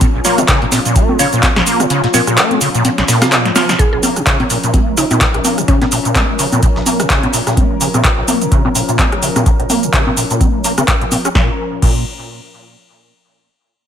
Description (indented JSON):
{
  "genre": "acid house",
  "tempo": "127 BPM",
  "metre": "4/4",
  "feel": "swing 57% on 16ths",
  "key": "Bb minor",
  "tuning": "A4 = 445 Hz",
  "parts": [
    { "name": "warm analog pad", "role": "sustained chords", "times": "0.0-11.6 s", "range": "F3 to Bb4", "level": "-22 LUFS", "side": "left 2 dB", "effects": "chorus, sidechain pumping" },
    { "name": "overdriven acid bass", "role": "riff", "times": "0.0-12.0 s", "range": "Bb1 to Db4", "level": "-17 LUFS", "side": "equal", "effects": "distortion, ensemble chorus, tape echo" },
    { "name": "breakbeat sampler-style drum kit", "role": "drums", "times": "0.0-7.6 s", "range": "hi-hat, snare drum", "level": "-25 LUFS", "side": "equal", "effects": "none" },
    { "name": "electro analog drum machine", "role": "drums", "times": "0.0-11.9 s", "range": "cabasa, congas, crash cymbal, handclaps, hi-hat, rim click, snare drum", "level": "-15 LUFS", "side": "equal", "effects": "none" },
    { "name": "electronic kick drum", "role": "drums", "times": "0.0-11.9 s", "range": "none", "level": "-14 LUFS", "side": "equal", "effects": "none" },
    { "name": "filtered dub chord stab", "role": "stabs", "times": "0.2-3.7 s", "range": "Bb3 to F5", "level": "-19 LUFS", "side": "right 1 dB", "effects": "phaser, lush chorus, tape echo" },
    { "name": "mallet-like synth pluck", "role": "melody", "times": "3.8-6.1 s", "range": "Db4 to Ab4", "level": "-21 LUFS", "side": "equal", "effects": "chorus, tape echo" }
  ],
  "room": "light reverb, digital ambience",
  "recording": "none",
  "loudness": "-11 LUFS",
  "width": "side -9 dB against mid",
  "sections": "0.0-3.8 A section; 3.8-11.3 B section; 11.3-13.2 C section",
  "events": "drop 0.0-3.8; kick drops out 1.9-3.8; drum fill 3.4-3.8",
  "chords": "0.0 Bbm"
}